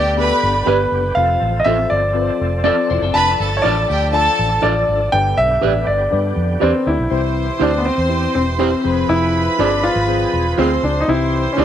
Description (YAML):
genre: soul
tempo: 121 BPM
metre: 4/4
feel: straight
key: C major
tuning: A4 = 440 Hz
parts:
  - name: clear grand piano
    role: melody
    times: 0.0-11.6 s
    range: B3 to A5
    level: -18 LUFS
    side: equal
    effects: none
  - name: clear chamber violin section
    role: second line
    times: 0.0-11.6 s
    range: G4 to C6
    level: -22 LUFS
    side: right 1 dB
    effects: slapback echo
  - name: tine electric piano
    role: accompaniment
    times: 0.0-11.6 s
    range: G2 to D5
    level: -24 LUFS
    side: left 11 dB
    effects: auto-pan
  - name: overdriven tonewheel organ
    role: sustained chords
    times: 0.0-11.6 s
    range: D3 to A4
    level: -28 LUFS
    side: equal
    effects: slow rotary speaker, chorus vibrato
  - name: vintage muted fingered electric bass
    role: bass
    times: 0.0-11.6 s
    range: E1 to G2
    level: -21 LUFS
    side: equal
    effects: none
  - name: electric guitar at the edge of break-up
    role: stabs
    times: 0.7-11.6 s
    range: C4 to D5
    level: -24 LUFS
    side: right 12 dB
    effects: none
  - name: electric guitar through a small old amp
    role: riff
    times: 2.7-3.3 s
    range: C4 to C5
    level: -26 LUFS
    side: left 14 dB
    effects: ensemble chorus
room: light reverb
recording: 1960s-style stereo with parts hard left and right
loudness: -14 LUFS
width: side -10 dB against mid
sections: 0.0-7.1 A section; 7.1-11.6 B section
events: none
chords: 0.0 G; 1.2 F; 3.1 Dm/F; 5.1 G; 7.1 C; 8.8 Fm; 11.1 C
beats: 0.17 0.67 | 1.16 1.66 2.15 2.65 | 3.15 3.64 4.14 4.63 | 5.13 5.62 6.12 6.61 | 7.11 7.61 8.10 8.60 | 9.09 9.59 10.09 10.58 | 11.08 11.58